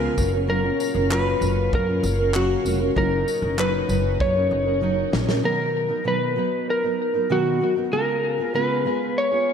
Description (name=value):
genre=acoustic pop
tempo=97 BPM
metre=4/4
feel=straight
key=unclear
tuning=A4 = 440 Hz
part: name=electric slide guitar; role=melody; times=0.0-9.5 s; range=Gb4 to Db5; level=-23 LUFS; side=left 2 dB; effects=ping-pong delay
part: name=fingerpicked steel-string acoustic guitar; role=accompaniment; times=0.0-9.5 s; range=Cb3 to Bb4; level=-25 LUFS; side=right 3 dB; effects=wide subtle chorus
part: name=bright tonewheel organ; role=sustained chords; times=0.0-5.4 s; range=Bb2 to F5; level=-33 LUFS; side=left 1 dB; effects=overdrive, chorus vibrato, slow rotary speaker
part: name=upright bass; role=bass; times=0.0-5.4 s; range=F1 to Gb2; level=-25 LUFS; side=equal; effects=none
part: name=loose indie drum kit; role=drums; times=0.2-5.4 s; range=handclaps, kick drum, snare drum, tambourine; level=-29 LUFS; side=equal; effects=none
room=moderate plate reverb, RT60 2.5 s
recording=dreamy mix soaked in reverb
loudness=-20 LUFS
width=side -7 dB against mid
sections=0.0-5.4 A section; 5.4-9.5 A section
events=drum fill 4.2-5.4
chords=0.2 Gbmaj7; 3.0 Ebm7/Gb; 5.4 Cbmaj7; 7.9 Db7